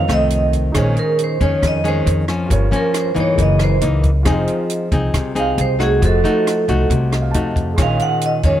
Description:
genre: bossa nova.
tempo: 136 BPM.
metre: 4/4.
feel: straight.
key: Bb minor.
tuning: A4 = 440 Hz.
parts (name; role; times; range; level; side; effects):
vibraphone with medium hard mallets; melody; 0.0-8.6 s; Ab4 to Gb5; -19 LUFS; right 3 dB; none.
dark grand piano; accompaniment; 0.0-8.6 s; Eb4 to C6; -28 LUFS; right 5 dB; none.
nylon-string guitar; accompaniment; 0.0-8.6 s; F2 to Ab4; -20 LUFS; left 2 dB; none.
upright bass; bass; 0.0-8.6 s; F1 to F2; -18 LUFS; equal; none.
compact cocktail drum kit; drums; 0.1-8.5 s; hi-hat, kick drum, rim click; -21 LUFS; equal; none.
room: light reverb.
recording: none.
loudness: -14 LUFS.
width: side -11 dB against mid.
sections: 0.7-8.6 A section.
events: vibraphone solo 0.7-8.6; grand piano fill 6.9-7.8.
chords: 0.0 F7; 0.7 Bbm11; 2.5 Gm7b5; 3.4 Gb13; 4.3 Fm7; 6.0 F7b9; 7.8 Bbm11.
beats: 0.30 | 0.74 1.18 1.62 2.06 | 2.50 2.94 3.38 3.82 | 4.26 4.70 5.14 5.58 | 6.02 6.46 6.90 7.34 | 7.78 8.22.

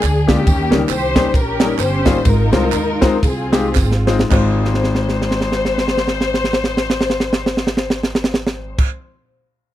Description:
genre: uptempo gospel.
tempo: 104-139 BPM.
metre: 4/4.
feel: swing 58% on 8ths.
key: Ab major.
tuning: A4 = 440 Hz.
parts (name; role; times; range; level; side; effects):
warm studio string section; melody; 0.0-8.8 s; Bb3 to C5; -21 LUFS; left 2 dB; none.
upright bass; bass; 0.0-8.8 s; G1 to Eb2; -21 LUFS; equal; none.
crisp fusion drum kit; drums; 0.0-8.9 s; crash cymbal, kick drum, ride cymbal, snare drum; -17 LUFS; right 1 dB; none.
handclaps and tambourine; percussion; 0.0-8.8 s; none; -30 LUFS; right 22 dB; none.
warm baby grand piano; accompaniment; 0.3-8.8 s; Ab1 to C5; -21 LUFS; left 4 dB; none.
room: little or no reverb.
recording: dry, close 1970s-style studio recording.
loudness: -14 LUFS.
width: side -13 dB against mid.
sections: 0.0-4.3 A section; 4.3-8.9 B section.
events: slowing down 0.5-4.3; drum fill 3.8-4.3, 4.6-8.8.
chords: 0.5 Eb7; 2.3 Ab6.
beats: 0.04 | 0.47 0.90 1.34 1.79 | 2.25 2.73 3.23 3.76 | 4.32 4.89 5.46 6.04 | 6.61 7.19 7.76 8.33.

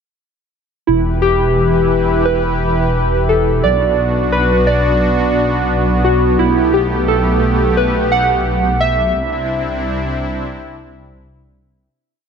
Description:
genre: IDM.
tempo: 87 BPM.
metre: 4/4.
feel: straight.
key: E minor.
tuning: A4 = 438 Hz.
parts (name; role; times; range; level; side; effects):
warbly lo-fi synth keys; melody; 0.9-11.2 s; E4 to F#5; -16 LUFS; equal; chorus, digital delay.
warm analog pad; sustained chords; 0.9-11.9 s; C3 to B4; -18 LUFS; right 1 dB; chorus, tremolo.
dark detuned saw bass; bass; 0.9-11.9 s; E1 to C2; -18 LUFS; equal; tube saturation.
room: moderate lush hall reverb, RT60 2.7 s.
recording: none.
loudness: -13 LUFS.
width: side -6 dB against mid.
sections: 0.9-11.9 groove.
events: fade-out 8.2-11.9.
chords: 0.9 Em; 3.6 Bm; 6.4 Gadd9/B; 9.2 Cadd9.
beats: | 0.89 1.58 2.27 2.96 | 3.65 4.33 5.03 5.71 | 6.40 7.09 7.78 8.47 | 9.16 9.85 10.54 11.23.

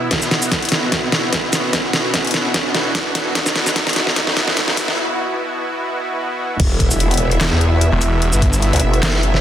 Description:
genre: heavy wobble dubstep.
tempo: 148 BPM.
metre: 4/4.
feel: swing 54% on 16ths, half-time.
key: unclear.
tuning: A4 = 440 Hz.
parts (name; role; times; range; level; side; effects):
supersaw pad; sustained chords; 0.0-9.4 s; B2 to E5; -22 LUFS; equal; sidechain pumping.
riser and impact; sound effects; 0.0-8.2 s; none; -26 LUFS; right 1 dB; none.
dubstep drum kit; drums; 0.1-9.4 s; crash cymbal, handclaps, hi-hat, shaker, snare drum; -18 LUFS; equal; none.
electronic kick drum; drums; 0.1-8.5 s; none; -20 LUFS; equal; overdrive.
growl bass; bass; 6.6-9.4 s; E1 to E2; -16 LUFS; equal; chorus, overdrive.
snarling distorted saw bass; bass; 7.4-8.7 s; E1 to G1; -17 LUFS; equal; distortion, overdrive.
room: light reverb.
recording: dense, heavily limited modern master, high-pass filter.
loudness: -15 LUFS.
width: side -10 dB against mid.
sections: 0.0-6.6 A section; 6.6-9.4 B section.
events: build-up 0.0-6.6; drum fill 0.0-5.0; riser 0.0-5.0; filter sweep 0.0-6.6; break 5.0-6.6; drop 6.6-9.4; impact 6.6-8.2.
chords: 0.0 E5.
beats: | 0.11 0.52 0.92 1.33 | 1.73 2.14 2.54 2.95 | 3.35 3.76 4.17 4.57 | 4.98 5.38 5.79 6.19 | 6.60 7.00 7.41 7.81 | 8.22 8.62 9.03.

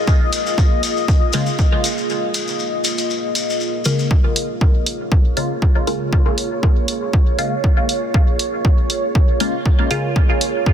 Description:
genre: dub techno.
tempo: 119 BPM.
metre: 4/4.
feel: swing 54% on 16ths.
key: Bb minor.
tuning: A4 = 440 Hz.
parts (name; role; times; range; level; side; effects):
deep dark ambient pad; sustained chords; 0.0-10.7 s; Bb3 to Eb5; -22 LUFS; equal; chorus, built-in reverb, sidechain pumping.
electronic kick drum; drums; 0.1-10.7 s; none; -14 LUFS; equal; none.
shekere; percussion; 0.1-4.1 s; none; -26 LUFS; left 5 dB; none.
electronic hi-hat; drums; 0.3-10.5 s; none; -22 LUFS; right 1 dB; none.
filtered dub chord stab; stabs; 1.3-10.7 s; Db3 to F4; -24 LUFS; left 1 dB; phaser, dub echo.
room: little or no reverb.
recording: dense, heavily limited modern master.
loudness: -15 LUFS.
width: side -9 dB against mid.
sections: 0.0-4.1 A section; 4.1-10.7 A section.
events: break 2.1-4.1; filter sweep on synth stab 4.1-10.7.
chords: 0.0 Bb7(no3); 4.1 Bbm7.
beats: | 0.07 0.58 1.08 1.59 | 2.09 2.60 3.10 3.60 | 4.11 4.61 5.12 5.62 | 6.12 6.63 7.13 7.64 | 8.14 8.65 9.15 9.65 | 10.16 10.66.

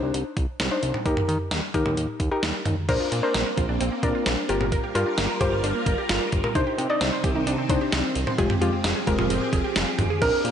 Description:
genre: synth-pop.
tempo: 131 BPM.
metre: 4/4.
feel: straight.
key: Bb mixolydian.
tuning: A4 = 442 Hz.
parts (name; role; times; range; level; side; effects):
soft round pluck; accompaniment; 0.0-10.5 s; Ab3 to Eb5; -27 LUFS; left 2 dB; chorus.
fat analog bass; bass; 0.0-10.5 s; F1 to Eb3; -28 LUFS; equal; none.
clean 12-bit digital drum machine; drums; 0.1-10.5 s; crash cymbal, hi-hat, kick drum, snare drum, toms; -26 LUFS; equal; none.
phased string machine; sustained chords; 2.9-10.5 s; C3 to Bb4; -29 LUFS; right 1 dB; ensemble chorus, phaser.
wide unison pluck; arpeggios; 2.9-10.2 s; Ab3 to C5; -30 LUFS; right 2 dB; analog delay, slapback echo.
warm concert grand piano; second line; 10.2-10.3 s; Bb4; -22 LUFS; right 5 dB; none.
room: wet lush hall reverb, RT60 1.6 s, digital ambience.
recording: big arena sound, nothing above 10.6 kHz.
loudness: -21 LUFS.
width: side -8 dB against mid.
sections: 0.0-2.9 A section; 2.9-10.2 B section.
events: none.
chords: 0.0 Cmadd9; 1.1 Eb; 2.9 Bbadd9; 4.5 Gm7; 6.6 Cmadd9; 8.4 Fmadd9.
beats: 0.14 0.60 | 1.06 1.51 1.97 2.43 | 2.89 3.35 3.81 4.26 | 4.72 5.18 5.64 6.09 | 6.55 7.01 7.47 7.93 | 8.38 8.84 9.30 9.76 | 10.22.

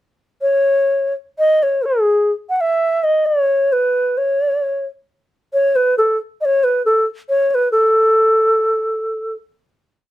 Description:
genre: indian classical.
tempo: 126-150 BPM.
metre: 4/4.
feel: straight.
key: unclear.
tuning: A4 = 441 Hz.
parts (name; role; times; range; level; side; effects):
reedy bass bansuri; solo; 0.4-9.3 s; G#4 to F#5; -14 LUFS; equal; none.
room: light reverb.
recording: none.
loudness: -14 LUFS.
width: side -14 dB against mid.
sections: 0.4-7.7 theme; 7.7-10.1 final note.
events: speeding up 0.4-10.1.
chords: none.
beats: | 0.42 0.90 1.37 1.85 | 2.32 2.78 3.25 3.71 | 4.17 4.62 5.08 5.52 | 5.97 6.41 6.84 7.27 | 7.70 8.12 8.54 8.95.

